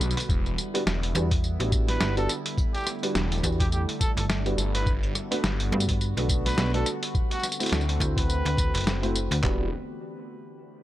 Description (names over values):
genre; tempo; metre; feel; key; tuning
glitch hop; 105 BPM; 4/4; swing 57% on 16ths; E minor; A4 = 440 Hz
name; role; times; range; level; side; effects
warbly tape-like pad; sustained chords; 0.0-9.7 s; D3 to F#4; -35 LUFS; right 1 dB; chorus, built-in reverb, vintage 12-bit sampler grit, sidechain pumping
phased detuned saw bass; bass; 0.0-9.7 s; E1 to D2; -28 LUFS; equal; phaser, tube saturation
boom bap sampler-style drum kit; drums; 0.0-9.4 s; hi-hat, rim click, snare drum, tambourine; -29 LUFS; equal; none
boom bap sampler-style drum kit; drums; 0.3-9.6 s; handclaps, kick drum, toms; -26 LUFS; equal; none
warm concert grand piano; stabs; 0.7-9.7 s; G3 to F#4; -32 LUFS; right 1 dB; sidechain pumping, analog delay
slap-like FM bass; bass; 1.1-9.4 s; F#1 to G2; -27 LUFS; equal; none
warm trumpet; melody; 1.9-9.0 s; F#4 to B4; -35 LUFS; right 1 dB; analog delay
room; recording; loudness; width
little or no reverb; dry, gritty hardware recording; -23 LUFS; side -14 dB against mid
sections
0.0-9.4 A section; 9.4-10.8 B section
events
drop 0.0-9.4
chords
0.3 Em7; 4.9 Gmaj7; 7.2 D7; 9.4 Em7